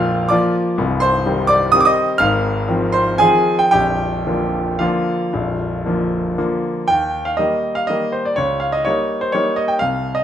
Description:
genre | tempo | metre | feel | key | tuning
classical, piano waltz | 109-133 BPM | 3/4 | rubato | Eb major | A4 = 440 Hz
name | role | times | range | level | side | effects
bright concert grand piano | solo | 0.0-10.2 s | Bb0 to G6 | -15 LUFS | equal | none
room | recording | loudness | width
wet stone room reverb, RT60 1.2 s | none | -15 LUFS | side -10 dB against mid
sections
0.0-6.9 A section; 6.9-10.2 B section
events
none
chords
0.0 Bb; 0.8 Cm; 2.2 Fm7/Ab; 3.7 Bb; 6.9 Eb; 8.4 Eb7/Db

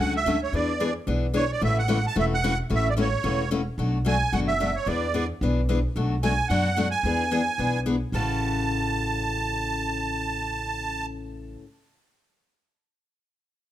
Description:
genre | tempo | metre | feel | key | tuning
acoustic string swing (jazz manouche) | 221 BPM | 4/4 | swing 57% on 8ths | A major | A4 = 441 Hz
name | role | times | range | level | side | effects
musette accordion | melody | 0.0-11.1 s | C#5 to A5 | -27 LUFS | right 4 dB | plate reverb
picked steel-string acoustic guitar | accompaniment | 0.0-11.7 s | A2 to G#4 | -27 LUFS | left 4 dB | none
upright bass | bass | 0.0-11.5 s | E1 to F#2 | -28 LUFS | equal | none
room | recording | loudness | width
moderate club reverb, RT60 0.7 s | none | -23 LUFS | side -12 dB against mid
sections
0.0-3.8 A section; 3.8-8.1 B section; 8.1-10.3 C section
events
none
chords
0.0 Dmaj9; 0.5 E7; 1.6 A6; 3.8 Bm7; 4.9 E7; 6.0 Bm7; 7.0 E7; 8.1 A6

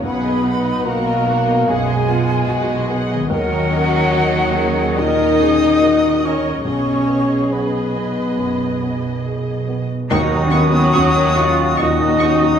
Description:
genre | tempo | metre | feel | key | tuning
cinematic, emotional film score for orchestra | 72 BPM | 4/4 | uneven beats, rubato | Eb minor | A4 = 440 Hz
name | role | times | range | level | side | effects
muted symphonic violin section | melody | 0.0-12.3 s | D#5 to Db6 | -29 LUFS | left 1 dB | none
bright silver concert flute | second line | 0.0-12.6 s | Gb5 to Eb6 | -24 LUFS | equal | none
muted symphonic violin section | second line | 0.0-12.3 s | Gb4 to Eb5 | -28 LUFS | left 2 dB | none
felt-muted upright piano | accompaniment | 0.0-12.6 s | B1 to G#4 | -24 LUFS | left 2 dB | none
muted symphonic viola section | accompaniment | 0.0-12.3 s | D#4 to Bb4 | -27 LUFS | right 2 dB | none
warm French horn section | sustained chords | 0.0-12.6 s | Gb3 to Eb4 | -18 LUFS | left 2 dB | none
concert harp | arpeggios | 0.0-12.6 s | B2 to Eb5 | -27 LUFS | left 4 dB | none
muted studio double bass section | bass | 0.0-12.5 s | B1 to Eb2 | -24 LUFS | right 5 dB | none
muted symphonic cello section | bass | 0.0-12.6 s | B2 to Gb4 | -25 LUFS | right 3 dB | none
mellow cor anglais | melody | 10.1-12.6 s | Gb4 to Eb5 | -21 LUFS | right 3 dB | none
warm oboe | second line | 10.1-12.6 s | Db6 | -26 LUFS | right 2 dB | none
timpani | percussion | 10.1-11.3 s | Eb3 | -26 LUFS | equal | none
room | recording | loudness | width
wet recital hall reverb, RT60 1.5 s | recorded in a church or concert hall | -14 LUFS | side -8 dB against mid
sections
0.0-10.1 A section; 10.1-12.6 B section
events
none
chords
0.0 B6; 3.3 Ebm7; 6.7 B6; 10.1 Ebm7

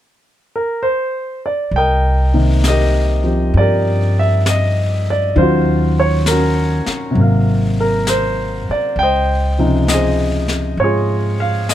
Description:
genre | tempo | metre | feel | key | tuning
jazz ballad | 66 BPM | 4/4 | swing 68% on 8ths | C minor | A4 = 437 Hz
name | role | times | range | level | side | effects
dark concert grand piano | accompaniment | 0.6-11.7 s | C3 to G5 | -16 LUFS | equal | none
upright bass | bass | 1.7-11.7 s | Ab1 to Ab2 | -16 LUFS | equal | none
jazz brush drum kit | drums | 1.7-11.7 s | brushed snare drum, hi-hat, snare drum | -25 LUFS | left 3 dB | none
room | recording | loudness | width
little or no reverb | close, detailed microphones | -13 LUFS | side -12 dB against mid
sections
0.0-1.7 A section; 1.7-11.7 B section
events
none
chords
0.0 N.C.; 1.7 Cm7; 5.4 Ebm9; 7.2 Ab13; 9.0 Dbmaj9

